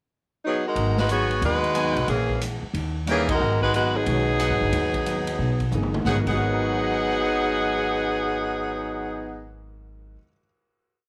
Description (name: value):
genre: jazz, big band swing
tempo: 181 BPM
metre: 4/4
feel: swing 64% on 8ths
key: G# minor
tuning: A4 = 441 Hz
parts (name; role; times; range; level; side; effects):
- clear saxophone section; melody; 0.4-9.5 s; E3 to C#5; -26 LUFS; equal; slapback echo
- hollow-body jazz guitar; accompaniment; 0.8-10.2 s; G#2 to G4; -37 LUFS; equal; none
- upright bass; bass; 0.8-10.2 s; G1 to D#2; -30 LUFS; equal; none
- swinging big-band drum kit; drums; 0.8-6.3 s; crash cymbal, hi-hat, kick drum, ride cymbal, snare drum, toms; -34 LUFS; equal; none
- bright trumpet section; stabs; 1.7-9.5 s; D#4 to G#5; -33 LUFS; equal; none
- warm baby grand piano; accompaniment; 3.1-10.4 s; G#2 to C#7; -36 LUFS; equal; none
room: light reverb, studio ambience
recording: none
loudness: -24 LUFS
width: mono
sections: 0.0-0.8 pickup bar; 0.8-6.1 A section; 6.1-8.7 final chord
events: band accent 3.2; drum fill 5.7-6.1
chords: 0.0 G#m7; 2.1 A#m7b5; 2.7 D#7; 3.4 G#m7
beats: 0.10 0.43 | 0.76 1.09 1.42 1.75 | 2.08 2.41 2.74 3.08 | 3.41 3.74 4.07 4.40 | 4.73 5.06 5.39 5.72 | 6.05 6.38 6.71 7.04 | 7.38 7.71 8.03 8.36